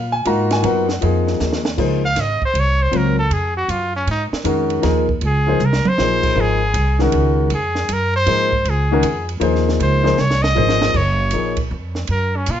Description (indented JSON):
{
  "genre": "modal jazz",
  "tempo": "157 BPM",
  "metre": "3/4",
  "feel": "swing 66% on 8ths",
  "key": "Db major",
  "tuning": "A4 = 445 Hz",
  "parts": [
    { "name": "clear concert grand piano", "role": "accompaniment", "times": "0.0-11.6 s", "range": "Eb3 to A#5", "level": "-19 LUFS", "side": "left 3 dB", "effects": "none" },
    { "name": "upright bass", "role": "bass", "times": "0.0-12.6 s", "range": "F#1 to A#2", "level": "-19 LUFS", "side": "right 1 dB", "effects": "none" },
    { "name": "compact cocktail drum kit", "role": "drums", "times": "0.3-12.6 s", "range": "crash cymbal, hi-hat, kick drum, ride cymbal, snare drum, toms", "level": "-26 LUFS", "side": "right 3 dB", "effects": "none" },
    { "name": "bright trumpet", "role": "melody", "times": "2.1-12.6 s", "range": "Db4 to F5", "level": "-20 LUFS", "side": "equal", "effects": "none" }
  ],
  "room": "moderate studio reverb, RT60 0.6 s",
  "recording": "nothing above 7.8 kHz",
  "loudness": "-15 LUFS",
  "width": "side -10 dB against mid",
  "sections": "0.0-1.8 A section; 1.8-10.9 A section; 10.9-12.6 A section",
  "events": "drum fill 1.4-1.8, 5.6-6.0, 10.2-10.9; trumpet solo 1.8-12.6",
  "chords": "0.0 F#maj9; 1.8 Dbmaj9; 10.9 F#maj9"
}